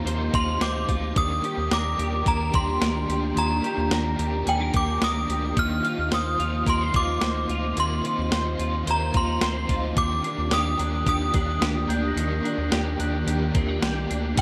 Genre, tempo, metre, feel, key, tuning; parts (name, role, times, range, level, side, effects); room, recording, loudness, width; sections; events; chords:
dream pop; 109 BPM; 4/4; straight; Eb major; A4 = 440 Hz
crunchy overdriven guitar; accompaniment; 0.0-14.4 s; Eb3 to C5; -35 LUFS; equal; tremolo, subtle chorus
ethereal airy pad; sustained chords; 0.0-14.4 s; Eb3 to G5; -33 LUFS; equal; ensemble chorus, built-in reverb, tremolo
clean electric guitar; arpeggios; 0.0-14.4 s; Eb3 to C5; -34 LUFS; equal; ensemble chorus, delay
round analog bass; bass; 0.0-14.4 s; C2 to Eb2; -31 LUFS; equal
clean 12-bit digital drum machine; drums; 0.1-14.4 s; crash cymbal, hi-hat, kick drum, snare drum; -29 LUFS; equal
synth chime; melody; 0.3-14.4 s; G5 to F6; -29 LUFS; equal; ensemble chorus, delay
glockenspiel with rubber mallets; texture; 5.8-7.9, 11.9-13.9 s; C6 to Bb6; -41 LUFS; equal; delay
wet plate reverb, RT60 1.3 s; bright 1980s-style digital production; -24 LUFS; mono
0.0-14.4 A section
0.0 Bbsus2; 1.2 Ebmaj7; 5.6 Bbsus2; 10.0 Ebmaj7